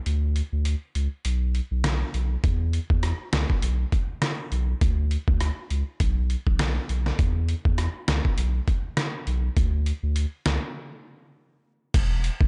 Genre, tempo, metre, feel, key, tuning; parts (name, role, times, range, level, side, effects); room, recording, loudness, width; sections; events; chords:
dancehall; 101 BPM; 4/4; swing 56% on 16ths; A4 = 440 Hz
saturated sub bass; bass; 0.1-12.5 s; E1 to E2; -27 LUFS; equal
trip hop sampler-style drum kit; drums; 0.1-12.5 s; crash cymbal, hi-hat, kick drum, rim click, snare drum; -27 LUFS; equal
little or no reverb; nothing above 10.3 kHz; -25 LUFS; mono
0.0-11.9 A section
break 0.0-2.4, 10.8-11.9